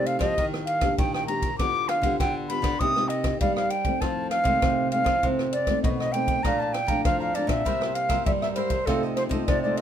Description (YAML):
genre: samba and choro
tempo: 99 BPM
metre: 4/4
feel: straight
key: unclear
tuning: A4 = 440 Hz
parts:
  - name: reedy concert flute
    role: melody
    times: 0.0-9.8 s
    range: A4 to Eb6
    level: -26 LUFS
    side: equal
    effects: none
  - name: nylon-string guitar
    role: accompaniment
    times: 0.0-9.8 s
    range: F2 to G4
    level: -30 LUFS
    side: left 2 dB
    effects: none
  - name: nylon-string guitar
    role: bass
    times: 0.0-9.8 s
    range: Bb2 to G3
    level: -31 LUFS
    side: right 2 dB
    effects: none
  - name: swinging big-band drum kit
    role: drums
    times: 0.1-9.8 s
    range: kick drum, ride cymbal, rim click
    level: -28 LUFS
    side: equal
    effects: none
  - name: cavaquinho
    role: accompaniment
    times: 6.4-9.8 s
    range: E4 to Bb5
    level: -33 LUFS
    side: right 6 dB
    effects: none
room: moderate small room ambience, RT60 0.5 s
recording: minimal, uncompressed stereo recording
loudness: -22 LUFS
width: side -9 dB against mid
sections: 0.0-9.8 A section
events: none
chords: 0.4 Ebmaj7; 1.6 G7/D; 2.8 Cm7; 4.0 F7; 6.4 Bbmaj7; 7.7 C7; 8.9 F7/C